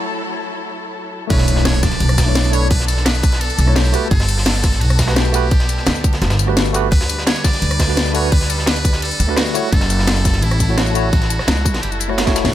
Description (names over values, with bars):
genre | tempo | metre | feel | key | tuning
liquid drum and bass | 171 BPM | 4/4 | straight | B minor | A4 = 441 Hz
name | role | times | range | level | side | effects
muted studio string section | sustained chords | 0.0-12.5 s | E3 to B4 | -27 LUFS | left 1 dB | none
trumpet with metal mute | melody | 1.3-12.2 s | E4 to D5 | -24 LUFS | equal | tape echo
tine electric piano | accompaniment | 1.3-12.5 s | A3 to C#5 | -24 LUFS | right 1 dB | medium stereo tremolo, tape echo
upright bass | bass | 1.3-12.5 s | F#1 to D2 | -18 LUFS | equal | high-pass filter
crunchy breakbeat drum kit | drums | 1.3-12.4 s | hi-hat, snare drum | -27 LUFS | equal | high-pass filter on hats, small room reverb, high-pass filter on snare, high-pass filter on room
electronic kick drum | drums | 1.3-12.3 s | none | -16 LUFS | equal | small room reverb
garage drum kit | drums | 1.3-12.5 s | hi-hat, rim click, snare drum, tambourine | -21 LUFS | left 1 dB | high-pass filter on hats, small room reverb, high-pass filter on snare, high-pass filter on perc, high-pass filter on cymbals
impact | sound effects | 1.3-2.7 s | none | -27 LUFS | equal | none
room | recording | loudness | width
small room ambience | none | -14 LUFS | side -12 dB against mid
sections
0.0-1.3 A section; 1.3-12.5 B section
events
break 0.0-1.3; build-up 0.0-1.3; drop 1.3-12.5; impact 1.3-2.7; drum fill 12.2-12.5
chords
0.0 F#m7; 1.3 Bm11; 3.9 Gmaj9; 6.9 D6; 9.6 F#m7